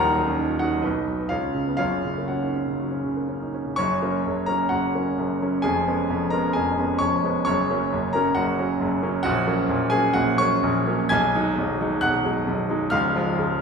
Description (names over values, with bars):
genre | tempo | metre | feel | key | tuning
classical, virtuoso piano study | 118-136 BPM | 4/4 | rubato | F# major | A4 = 440 Hz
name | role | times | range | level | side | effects
warm grand piano | solo | 0.0-13.6 s | B0 to G#6 | -21 LUFS | equal | none
room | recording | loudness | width
wet recital hall reverb, RT60 1.4 s | recorded in a church or concert hall | -21 LUFS | side -5 dB against mid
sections
0.0-3.8 A section; 3.8-13.6 B section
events
none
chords
0.0 D#m7; 0.8 B; 1.3 C#7; 1.8 F#; 5.6 C#7/E#; 7.5 F#; 9.3 F#/A#; 11.1 G#m7/B; 12.9 C#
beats
0.38 0.84 1.31 | 1.80 2.31 2.80 3.30 | 3.79 4.26 4.71 5.18 | 5.65 6.11 6.56 7.01 | 7.47 7.92 8.37 8.81 | 9.26 9.71 10.17 10.64 | 11.12 11.58 12.03 12.48 | 12.93 13.39